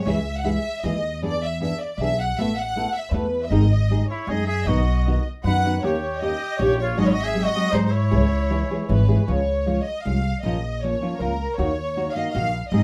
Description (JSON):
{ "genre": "mexican folk, mariachi", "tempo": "156 BPM", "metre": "3/4", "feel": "straight", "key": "C# minor, Db major from 9.3 s", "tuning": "A4 = 441 Hz", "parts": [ { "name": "warm symphonic violin section", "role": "melody", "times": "0.0-12.8 s", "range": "Bb4 to F#5", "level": "-29 LUFS", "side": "equal", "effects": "none" }, { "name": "nylon-string guitar", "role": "accompaniment", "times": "0.1-12.8 s", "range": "G#2 to A4", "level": "-27 LUFS", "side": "equal", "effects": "none" }, { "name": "upright bass", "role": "bass", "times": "0.1-12.8 s", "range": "G#1 to G#2", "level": "-25 LUFS", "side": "equal", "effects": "none" }, { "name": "clear trumpet", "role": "second line", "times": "4.1-9.1 s", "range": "D#4 to B4", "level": "-32 LUFS", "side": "equal", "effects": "none" } ], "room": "moderate small room reverb, RT60 0.5 s", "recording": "none", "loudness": "-22 LUFS", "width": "mono", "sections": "0.1-9.3 A section; 9.3-12.8 B section", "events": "none", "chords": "0.1 C#m; 1.2 E7; 2.4 Asus2; 3.5 G#; 4.7 B; 5.8 D#7; 7.0 G#7; 8.1 C#m; 9.3 Db; 10.4 Bbm; 11.6 Ebm" }